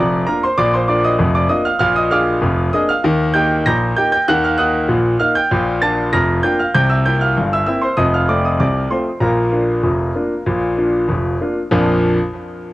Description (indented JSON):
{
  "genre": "ragtime piano",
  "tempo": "97 BPM",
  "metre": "2/4",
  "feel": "straight",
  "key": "Bb major",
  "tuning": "A4 = 441 Hz",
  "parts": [
    { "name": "clear concert grand piano", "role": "solo", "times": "0.0-12.2 s", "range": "F1 to Bb6", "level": "-14 LUFS", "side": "equal", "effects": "none" }
  ],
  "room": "moderate studio reverb, RT60 0.5 s",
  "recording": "home recording on cassette",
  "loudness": "-14 LUFS",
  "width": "side -17 dB against mid",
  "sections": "0.0-11.7 A section; 11.7-12.7 B section",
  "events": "none",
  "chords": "0.0 Bb; 1.8 Bb7; 3.0 Eb; 4.3 Ebm; 5.5 Bb; 6.7 C7; 8.0 F7; 9.2 Bb",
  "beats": "| 0.58 1.20 | 1.81 2.43 | 3.04 3.66 | 4.27 4.89 | 5.50 6.12 | 6.74 7.36 | 7.97 8.60 | 9.22 9.85 | 10.47 11.10 | 11.72"
}